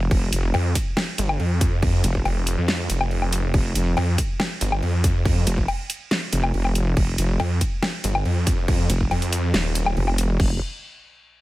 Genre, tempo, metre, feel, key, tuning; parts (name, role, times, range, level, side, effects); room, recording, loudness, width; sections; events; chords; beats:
heavy wobble dubstep; 140 BPM; 4/4; half-time; A4 = 440 Hz
wobble bass; bass; 0.0-10.6 s; F1; -21 LUFS; equal; chorus, overdrive
dubstep drum kit; drums; 0.1-10.5 s; crash cymbal, hi-hat, snare drum, woodblock; -26 LUFS; left 1 dB; studio reverb
electronic kick drum; drums; 0.1-10.5 s; -22 LUFS; equal; studio reverb
snarling distorted saw bass; bass; 0.5-10.0 s; Eb1 to F2; -22 LUFS; equal; distortion, overdrive
little or no reverb; -20 LUFS; side -17 dB against mid
0.0-10.4 A section; 10.4-11.4 B section
drop 0.0-10.4
| 0.11 0.54 0.97 1.40 | 1.83 2.25 2.68 3.11 | 3.54 3.97 4.40 4.83 | 5.25 5.68 6.11 6.54 | 6.97 7.40 7.83 8.25 | 8.68 9.11 9.54 9.97 | 10.40